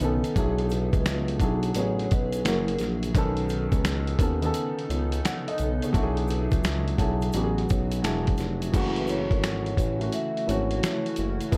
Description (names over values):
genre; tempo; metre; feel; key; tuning
lo-fi hip hop; 86 BPM; 4/4; swing 65% on 16ths; F# minor; A4 = 440 Hz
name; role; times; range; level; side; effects
felt-muted upright piano; accompaniment; 0.0-11.6 s; D#3 to F#5; -31 LUFS; equal; cassette tape
granular cloud pad; sustained chords; 0.0-11.6 s; C#3 to A4; -39 LUFS; equal; built-in reverb
smooth synth bass; bass; 0.0-11.6 s; E1 to D#2; -31 LUFS; equal; none
dusty soul sampler-style drum kit; drums; 0.0-11.6 s; crash cymbal, finger snaps, hi-hat, kick drum, snare drum; -30 LUFS; equal; none
tube shaker; percussion; 0.0-11.6 s; none; -52 LUFS; equal; none
vibraphone with soft mallets; melody; 0.4-2.8, 9.0-11.0 s; G#4 to E5; -35 LUFS; equal; tape echo
room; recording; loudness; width
light reverb; dark, warm production; -26 LUFS; mono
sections
0.0-8.7 A section; 8.7-11.6 B section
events
none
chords
0.4 E9/B; 1.8 Amaj13; 2.5 F#9; 3.2 B9; 5.9 E9/B; 7.3 Amaj13; 8.0 E9; 8.7 F#m7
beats
| 0.36 1.06 1.76 2.46 | 3.15 3.85 4.55 5.25 | 5.94 6.64 7.34 8.04 | 8.73 9.43 10.13 10.83 | 11.53